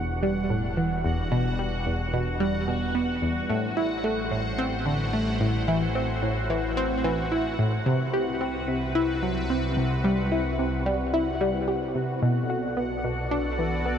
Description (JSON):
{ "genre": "ambient, sequencer-driven space music", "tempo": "110 BPM", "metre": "4/4", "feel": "straight", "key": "A dorian", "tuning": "A4 = 440 Hz", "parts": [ { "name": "sweeping resonant pad", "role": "sustained chords", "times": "0.0-14.0 s", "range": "C3 to D5", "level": "-33 LUFS", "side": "left 1 dB", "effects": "chorus" }, { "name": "analog pluck", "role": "riff", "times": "0.0-14.0 s", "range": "E2 to G4", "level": "-26 LUFS", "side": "equal", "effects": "chorus, phaser, tape echo" }, { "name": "fat analog bass", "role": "bass", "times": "0.0-14.0 s", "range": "E1 to C2", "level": "-32 LUFS", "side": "equal", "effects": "none" }, { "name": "bubbling stepped-filter texture", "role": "texture", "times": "0.0-14.0 s", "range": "F#4 to F#5", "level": "-34 LUFS", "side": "left 1 dB", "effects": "chorus, built-in reverb" } ], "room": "moderate huge ambient reverb, RT60 7.9 s", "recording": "none", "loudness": "-24 LUFS", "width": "side -8 dB against mid", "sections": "0.0-14.0 A section", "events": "fade-in on analog synth pad 0.0-14.0", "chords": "0.0 Em7; 3.5 Am7; 7.9 Cmaj7; 12.2 Bm7" }